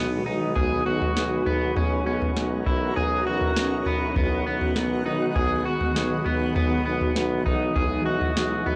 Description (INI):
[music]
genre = dream pop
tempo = 100 BPM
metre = 4/4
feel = straight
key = B major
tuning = A4 = 440 Hz
[part]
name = shimmering ambient pad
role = sustained chords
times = 0.0-8.8 s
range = D#3 to A#4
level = -30 LUFS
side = equal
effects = chorus, built-in reverb
[part]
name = electric guitar at the edge of break-up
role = arpeggios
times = 0.0-8.8 s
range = B3 to G#4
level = -30 LUFS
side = equal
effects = subtle chorus, tape echo
[part]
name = warm tuba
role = bass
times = 0.0-8.8 s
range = B1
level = -30 LUFS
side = equal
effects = none
[part]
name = soft vintage rhythm box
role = drums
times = 0.6-8.8 s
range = kick drum, snare drum, toms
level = -30 LUFS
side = equal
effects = none
[sound]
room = little or no reverb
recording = dry, gritty hardware recording, transformer saturation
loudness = -24 LUFS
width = mono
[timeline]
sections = 0.0-8.8 A section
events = none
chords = 0.0 B6; 1.8 F#7/B; 4.2 B6; 6.6 Emaj9/B